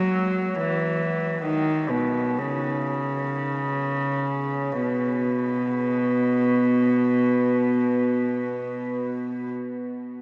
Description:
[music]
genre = classical, free, expressive piece for unaccompanied cello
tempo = 20-38 BPM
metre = 4/4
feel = rubato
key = B major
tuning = A4 = 440 Hz
[part]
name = warm cello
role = solo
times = 0.0-9.5 s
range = B2 to F#3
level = -21 LUFS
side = equal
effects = none
[sound]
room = wet huge ambient reverb, RT60 8.1 s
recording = in a vast, echoing space, small speaker sound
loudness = -21 LUFS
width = side -31 dB against mid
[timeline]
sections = 0.0-4.8 A section; 4.8-10.2 B section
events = slowing down 0.0-4.8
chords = none

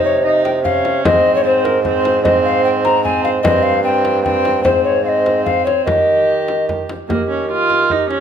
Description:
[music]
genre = classical, renaissance-style consort dance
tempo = 150 BPM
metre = 3/4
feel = straight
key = Eb mixolydian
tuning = A4 = 439 Hz
[part]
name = mellow hollow alto recorder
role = melody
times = 0.0-8.2 s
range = G4 to Bb5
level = -16 LUFS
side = left 4 dB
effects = none
[part]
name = warm viola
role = second line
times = 0.0-8.2 s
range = Bb3 to G4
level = -19 LUFS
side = right 5 dB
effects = none
[part]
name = mellow bassoon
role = bass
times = 0.0-8.2 s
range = G2 to Eb3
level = -18 LUFS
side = right 3 dB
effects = none
[part]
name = frame drum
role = percussion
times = 0.5-8.2 s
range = none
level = -24 LUFS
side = left 1 dB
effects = none
[sound]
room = moderate recital hall reverb, RT60 1.4 s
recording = minimal, uncompressed stereo recording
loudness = -13 LUFS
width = side -8 dB against mid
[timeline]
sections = 0.0-7.1 A section; 7.1-8.2 B section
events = none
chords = 0.0 Cm; 1.0 Ab; 3.4 C5/G; 4.7 Ab; 5.9 Eb

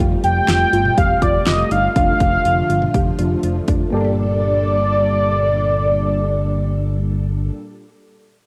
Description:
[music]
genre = synth-pop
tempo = 122 BPM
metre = 4/4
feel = straight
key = G minor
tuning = A4 = 440 Hz
[part]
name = mellow FM electric piano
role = accompaniment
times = 0.0-7.5 s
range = A3 to A4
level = -29 LUFS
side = equal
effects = chorus, cassette tape
[part]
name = string machine, violas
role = sustained chords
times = 0.0-7.5 s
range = Bb2 to A4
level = -29 LUFS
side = equal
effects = phaser, ensemble chorus, cassette tape
[part]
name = unison pluck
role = arpeggios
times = 0.0-7.6 s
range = G3 to G4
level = -29 LUFS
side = equal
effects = phaser, cassette tape, tape echo
[part]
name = smooth synth bass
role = bass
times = 0.0-7.5 s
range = F1 to G1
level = -22 LUFS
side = equal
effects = none
[part]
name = octave-doubled lead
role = melody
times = 0.2-7.5 s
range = D5 to G5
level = -20 LUFS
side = equal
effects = chorus, cassette tape
[part]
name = pop drum kit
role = drums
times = 0.2-3.8 s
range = hi-hat, kick drum, snare drum, toms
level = -22 LUFS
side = equal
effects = cassette tape
[sound]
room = moderate spring reverb, RT60 1.6 s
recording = home recording on cassette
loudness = -17 LUFS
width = mono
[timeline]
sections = 0.0-3.9 A section; 3.9-7.9 B section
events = none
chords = 0.0 Fadd9; 2.0 Dm/F; 3.9 Gmadd9

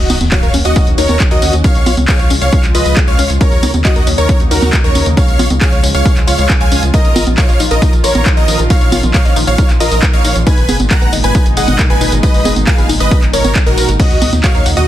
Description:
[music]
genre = uplifting trance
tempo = 136 BPM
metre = 4/4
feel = straight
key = Eb minor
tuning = A4 = 440 Hz
[part]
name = big supersaw lead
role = melody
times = 0.0-14.9 s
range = Gb4 to Bb5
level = -18 LUFS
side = equal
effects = sidechain pumping, dub echo
[part]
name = plucky unison lead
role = second line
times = 0.0-14.9 s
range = Bb4 to Bb5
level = -22 LUFS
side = equal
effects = sidechain pumping, dub echo
[part]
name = lush unison pad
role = sustained chords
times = 0.3-14.9 s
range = Bb2 to Gb4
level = -21 LUFS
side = equal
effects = chorus, sidechain pumping
[part]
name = tight sequencer bass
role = bass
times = 0.0-14.9 s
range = Gb1 to Eb2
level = -15 LUFS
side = equal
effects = sidechain pumping
[part]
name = impact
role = sound effects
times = 0.0-1.6 s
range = none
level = -25 LUFS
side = equal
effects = none
[part]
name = wide unison pluck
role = arpeggios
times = 0.1-14.7 s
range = Db4 to Gb5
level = -23 LUFS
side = left 4 dB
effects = cassette tape, sidechain pumping, dub echo
[part]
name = punchy analog drum machine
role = drums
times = 0.1-14.9 s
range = congas, crash cymbal, handclaps, hi-hat, tambourine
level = -17 LUFS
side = equal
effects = none
[part]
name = electronic kick drum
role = drums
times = 0.3-14.5 s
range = none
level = -12 LUFS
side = equal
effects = none
[sound]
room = little or no reverb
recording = dense, heavily limited modern master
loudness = -9 LUFS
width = side -12 dB against mid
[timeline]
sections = 0.0-14.9 A section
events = impact 0.0-1.6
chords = 0.0 Ebm7; 1.6 Db; 3.4 Ebm7; 5.2 Db; 6.9 Bbsus4; 10.5 Abmadd9; 14.0 Ebm7

